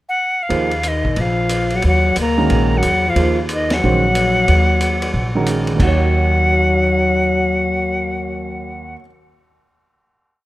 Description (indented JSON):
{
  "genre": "modal jazz",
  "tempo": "182 BPM",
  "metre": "4/4",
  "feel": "swing 64% on 8ths",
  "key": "Eb minor",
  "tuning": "A4 = 440 Hz",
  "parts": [
    { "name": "breathy bright jazz flute", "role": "melody", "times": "0.1-9.0 s", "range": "Eb5 to Bb5", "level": "-19 LUFS", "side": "equal", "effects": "none" },
    { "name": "warm grand piano", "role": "accompaniment", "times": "0.5-9.1 s", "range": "Eb2 to Db5", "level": "-22 LUFS", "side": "right 3 dB", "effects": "none" },
    { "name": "upright bass", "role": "bass", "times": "0.5-8.9 s", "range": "Bb1 to Bb2", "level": "-19 LUFS", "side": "equal", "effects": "none" },
    { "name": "vintage drum kit", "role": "drums", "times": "0.5-5.9 s", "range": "crash cymbal, hi-hat, kick drum, ride cymbal, snare drum", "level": "-25 LUFS", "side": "equal", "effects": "none" },
    { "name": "breathy trombone", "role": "second line", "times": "0.9-8.9 s", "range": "Eb3 to Bb3", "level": "-20 LUFS", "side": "left 2 dB", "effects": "none" }
  ],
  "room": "light reverb, studio ambience",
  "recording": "rough home demo mix",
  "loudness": "-14 LUFS",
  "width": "side -16 dB against mid",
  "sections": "0.0-0.5 pickup bar; 0.5-5.8 A section; 5.8-8.4 final chord",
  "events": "band accent 3.7",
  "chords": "0.0 N.C.; 0.5 Ebm9; 5.8 Ebm7"
}